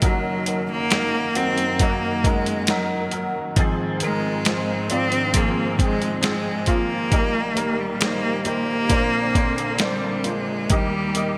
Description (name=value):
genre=pop ballad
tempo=68 BPM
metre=4/4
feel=straight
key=unclear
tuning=A4 = 440 Hz
part: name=bright cello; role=melody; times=0.0-11.4 s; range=Gb3 to C4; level=-26 LUFS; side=equal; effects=delay
part: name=warm upright piano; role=accompaniment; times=0.0-11.4 s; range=Gb1 to Eb5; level=-28 LUFS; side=equal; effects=ensemble chorus
part: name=warm studio string section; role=sustained chords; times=0.0-11.4 s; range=Eb2 to G4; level=-33 LUFS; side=equal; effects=none
part: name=nylon-string guitar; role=arpeggios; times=0.0-11.4 s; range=Ab2 to Bb4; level=-35 LUFS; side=equal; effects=none
part: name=dusty soul sampler-style drum kit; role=drums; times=0.0-11.4 s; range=hi-hat, kick drum, snare drum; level=-24 LUFS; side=equal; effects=gated reverb
room=light reverb, studio reverb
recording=bright 1980s-style digital production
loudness=-22 LUFS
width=mono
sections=0.0-11.4 A section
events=none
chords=0.0 Gb6; 3.6 Ab6; 7.1 Eb/Bb; 8.9 Bbadd9; 10.7 Eb